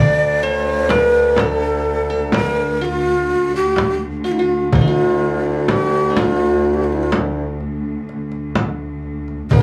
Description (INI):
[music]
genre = Arabic maqam ensemble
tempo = 126 BPM (eighths)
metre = 10/8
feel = straight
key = D maqam huzam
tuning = A4 = 440 Hz
[part]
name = breathy ney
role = melody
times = 0.0-9.6 s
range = E4-45c to D5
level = -20 LUFS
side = equal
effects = plate reverb
[part]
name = qanun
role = second line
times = 0.0-9.6 s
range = E4-50c to D5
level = -27 LUFS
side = equal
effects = none
[part]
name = clear bassoon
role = bass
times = 0.0-9.6 s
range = D2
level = -24 LUFS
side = equal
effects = none
[part]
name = warm studio cello section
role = drone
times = 0.0-9.6 s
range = D2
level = -27 LUFS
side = equal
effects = none
[part]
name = darbuka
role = percussion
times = 0.4-9.6 s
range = none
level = -22 LUFS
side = equal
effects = none
[part]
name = frame drum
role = percussion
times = 0.9-9.6 s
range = none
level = -21 LUFS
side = equal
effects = none
[sound]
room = moderate small room reverb, RT60 0.5 s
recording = small room ambience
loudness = -18 LUFS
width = mono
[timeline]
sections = 0.0-9.6 A section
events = none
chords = none